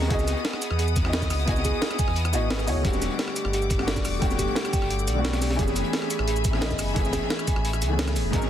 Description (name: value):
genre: liquid drum and bass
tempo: 175 BPM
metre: 4/4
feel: straight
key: unclear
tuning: A4 = 440 Hz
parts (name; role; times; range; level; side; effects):
- felt-muted upright piano; accompaniment; 0.0-8.5 s; D3 to D#5; -30 LUFS; left 3 dB; tape echo
- bright symphonic string section; sustained chords; 0.0-8.5 s; A3 to D#6; -33 LUFS; left 4 dB; none
- harp-like synth pluck; arpeggios; 0.0-8.5 s; G4 to G#5; -32 LUFS; right 4 dB; chorus, tape echo
- sub bass with octave; bass; 0.0-8.5 s; E1 to E2; -27 LUFS; equal; none
- crunchy breakbeat drum kit; drums; 0.0-8.5 s; hi-hat, snare drum; -34 LUFS; equal; high-pass filter on hats, high-pass filter on snare, high-pass filter on room
- breakbeat sampler-style drum kit; drums; 0.1-8.5 s; cabasa, hi-hat, rim click, snare drum; -30 LUFS; equal; none
- electronic kick drum; drums; 0.1-8.4 s; none; -27 LUFS; equal; none
room: studio reverb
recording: dense, heavily limited modern master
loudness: -22 LUFS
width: side -10 dB against mid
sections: 0.0-8.5 A section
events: none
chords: 0.1 C#m11; 2.8 Em11; 5.6 F#m11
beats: | 0.10 0.45 0.79 1.13 | 1.48 1.82 2.16 2.50 | 2.85 3.19 3.53 3.88 | 4.22 4.56 4.91 5.25 | 5.59 5.93 6.28 6.62 | 6.96 7.30 7.65 7.99 | 8.33